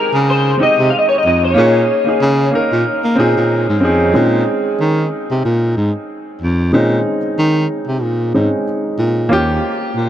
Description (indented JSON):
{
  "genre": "R&B, neo-soul",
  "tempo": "93 BPM",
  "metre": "4/4",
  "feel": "swing 55% on 16ths",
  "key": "Bb dorian",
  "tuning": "A4 = 441 Hz",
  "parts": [
    { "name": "electric guitar through a small old amp", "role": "melody", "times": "0.0-3.3 s", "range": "Bb4 to F5", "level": "-16 LUFS", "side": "left 1 dB", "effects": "analog chorus, diffuse ambient delay" },
    { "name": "warm baby grand piano", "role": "accompaniment", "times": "0.0-10.1 s", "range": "Ab3 to Bb4", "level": "-17 LUFS", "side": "right 1 dB", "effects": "none" },
    { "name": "dark baritone saxophone", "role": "bass", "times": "0.1-10.1 s", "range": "Eb2 to Bb3", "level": "-15 LUFS", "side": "equal", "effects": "none" }
  ],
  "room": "moderate huge ambient reverb, RT60 7.3 s",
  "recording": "dreamy mix soaked in reverb",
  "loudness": "-12 LUFS",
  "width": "side -11 dB against mid",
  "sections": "0.0-4.1 A section; 4.1-9.3 B section",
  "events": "grand piano solo 4.1-9.3",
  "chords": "0.0 Fm9; 1.6 Bbm11; 9.3 Eb9"
}